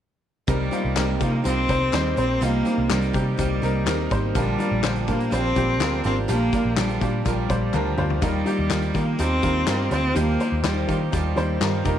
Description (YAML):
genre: piano-driven pop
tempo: 124 BPM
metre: 4/4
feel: straight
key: C minor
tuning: A4 = 440 Hz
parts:
  - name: rich cello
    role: melody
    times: 0.5-11.8 s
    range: G3 to C4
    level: -25 LUFS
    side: left 1 dB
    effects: slapback echo
  - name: clear upright piano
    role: accompaniment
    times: 0.5-12.0 s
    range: Bb2 to C5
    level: -26 LUFS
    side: left 1 dB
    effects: none
  - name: picked steel-string acoustic guitar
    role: riff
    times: 0.5-12.0 s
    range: Bb2 to G4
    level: -30 LUFS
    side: right 12 dB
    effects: none
  - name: vintage muted picked electric bass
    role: bass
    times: 0.5-12.0 s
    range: F1 to Eb3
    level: -25 LUFS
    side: equal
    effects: none
  - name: loose indie drum kit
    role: drums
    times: 0.5-12.0 s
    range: handclaps, hi-hat, kick drum, snare drum, toms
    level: -28 LUFS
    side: left 3 dB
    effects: none
  - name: group handclap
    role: percussion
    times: 1.0-11.7 s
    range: none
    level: -38 LUFS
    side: left 11 dB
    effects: none
room: small room ambience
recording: 1960s-style stereo with parts hard left and right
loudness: -20 LUFS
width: side -10 dB against mid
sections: 0.5-12.0 A section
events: drum fill 7.7-8.2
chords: 0.5 Cm7; 4.4 Bb6; 8.2 Ebadd9